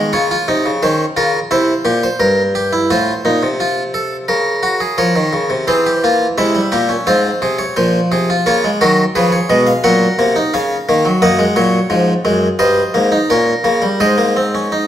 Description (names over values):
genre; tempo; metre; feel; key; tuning
classical, baroque-style 4-part fugue for harpsichord; 86 BPM; 4/4; straight; unclear; A4 = 440 Hz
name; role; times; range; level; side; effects
harpsichord; solo; 0.0-14.9 s; Gb2 to Gb5; -12 LUFS; equal; none
room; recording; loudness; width
moderate recital hall reverb, RT60 1.6 s; none; -12 LUFS; side -10 dB against mid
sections
0.0-5.7 A section; 5.7-14.9 B section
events
none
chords
0.1 Bbm; 1.5 C7; 2.9 F7/A; 4.3 Bbm/Db; 5.7 C7/E; 7.1 Fm/Ab; 8.5 Db7; 9.8 Gb/Bb; 11.2 Ebm7/Gb; 12.6 Eb7/G; 14.0 Ab